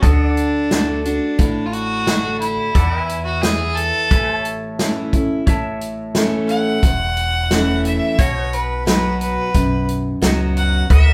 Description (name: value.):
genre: honky-tonk and classic country.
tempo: 88 BPM.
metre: 4/4.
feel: straight.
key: A major.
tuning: A4 = 440 Hz.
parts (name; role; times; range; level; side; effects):
clear fiddle; melody; 0.0-11.1 s; D4 to F#5; -23 LUFS; equal; none.
picked steel-string acoustic guitar; accompaniment; 0.0-11.1 s; E2 to F#4; -25 LUFS; equal; none.
pedal steel guitar; sustained chords; 0.0-11.1 s; A4 to A5; -31 LUFS; equal; none.
upright bass; bass; 0.0-11.1 s; E1 to E2; -22 LUFS; equal; none.
natural country drum kit; drums; 0.0-11.1 s; hi-hat, kick drum, snare drum; -20 LUFS; equal; none.
room: wet studio reverb, RT60 0.6 s.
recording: band playing live in one room.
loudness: -18 LUFS.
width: mono.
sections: 0.0-5.5 A section; 5.5-11.1 B section.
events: fiddle solo 5.5-11.1.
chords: 0.0 D; 2.7 E; 4.1 A; 8.2 B.